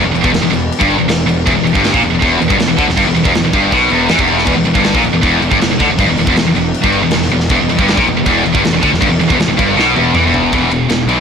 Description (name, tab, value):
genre	heavy metal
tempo	159 BPM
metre	4/4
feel	straight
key	E minor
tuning	A4 = 440 Hz
part	heavy high-gain guitar	riff	0.0-11.2 s	E2 to E3	-15 LUFS	right 10 dB	distortion
part	high-gain distorted guitar	riff	0.0-11.2 s	E2 to E3	-15 LUFS	left 10 dB	distortion
part	thick fuzz guitar	riff	0.0-10.5 s	E2 to E3	-18 LUFS	right 1 dB	distortion
part	fuzz picked electric bass	bass	0.0-11.2 s	E1 to E2	-19 LUFS	equal	overdrive, transformer saturation
part	tight metal drum kit	drums	0.2-11.2 s	crash cymbal, kick drum, ride cymbal, snare drum, toms	-17 LUFS	equal	none
room	little or no reverb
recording	blown-out, overdriven recording, overdrive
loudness	-10 LUFS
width	side -6 dB against mid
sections	0.0-10.5 A section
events	drum fill 9.8-10.5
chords	0.0 Em; 10.5 E5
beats	0.33 0.70 1.08 | 1.46 1.83 2.21 2.59 | 2.97 3.34 3.72 4.10 | 4.48 4.85 5.23 5.61 | 5.99 6.36 6.74 7.12 | 7.50 7.87 8.25 8.63 | 9.01 9.38 9.76 10.14 | 10.52 10.90